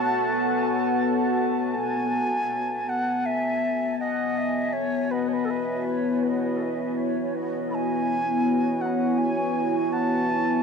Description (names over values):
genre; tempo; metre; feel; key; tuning
ambient; free time; none; none; unclear; A4 = 440 Hz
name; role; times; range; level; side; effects
bright wooden flute; melody; 0.0-10.6 s; A4 to B5; -27 LUFS; equal; cassette tape, dub echo
deep dark ambient pad; sustained chords; 0.0-10.6 s; B3 to F#5; -24 LUFS; left 1 dB; chorus, built-in reverb, cassette tape
room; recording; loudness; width
wet small room reverb, RT60 0.5 s; home recording on cassette; -22 LUFS; side -5 dB against mid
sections
0.0-1.8 A section; 1.8-10.6 B section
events
none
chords
0.0 F#m7/B